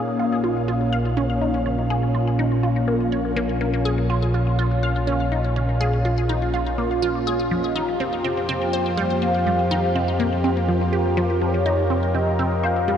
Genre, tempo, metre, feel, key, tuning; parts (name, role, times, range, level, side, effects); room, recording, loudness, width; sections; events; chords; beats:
ambient, sequencer-driven space music; 123 BPM; 4/4; straight; Bb dorian; A4 = 445 Hz
phased analog pad; sustained chords; 0.0-13.0 s; Bb2 to F5; -23 LUFS; equal; phaser, chorus, shimmer reverb
resonant blip pluck; riff; 0.0-13.0 s; F3 to F5; -26 LUFS; equal; phaser, shimmer reverb, ping-pong delay
analog drone; bass; 0.7-13.0 s; Bb1 to F2; -24 LUFS; equal; chorus
mellow horn-like synth lead; melody; 7.5-13.0 s; C5 to G5; -27 LUFS; left 2 dB; analog chorus, shimmer reverb, ping-pong delay
wet huge ambient reverb, RT60 7.6 s; dark, warm production, nothing above 10.5 kHz; -19 LUFS; side -8 dB against mid
0.0-13.0 A section
0.0 Bbm; 7.5 Fsus2
0.20 0.69 1.17 | 1.66 2.15 2.64 3.12 | 3.61 4.10 4.59 5.08 | 5.56 6.05 6.54 7.03 | 7.51 8.00 8.49 8.98 | 9.46 9.95 10.44 10.93 | 11.42 11.90 12.39 12.88